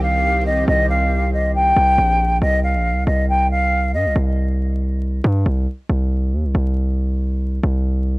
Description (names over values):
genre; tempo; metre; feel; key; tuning
hip hop, drill; 138 BPM; 4/4; half-time; C minor; A4 = 440 Hz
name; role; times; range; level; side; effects
mellow silver concert flute; melody; 0.0-4.1 s; Eb5 to G5; -18 LUFS; equal; none
warm analog pad; sustained chords; 0.0-2.4 s; Eb3 to G4; -27 LUFS; equal; chorus
distorted 808-style bass; bass; 0.0-8.2 s; Bb1 to G2; -18 LUFS; equal; distortion
room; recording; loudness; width
small room ambience; dry, gritty hardware recording, vinyl crackle; -16 LUFS; side -22 dB against mid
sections
0.0-2.4 A section; 2.4-8.2 B section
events
break 4.2-8.2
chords
0.0 Cm; 2.4 C5; 5.9 N.C.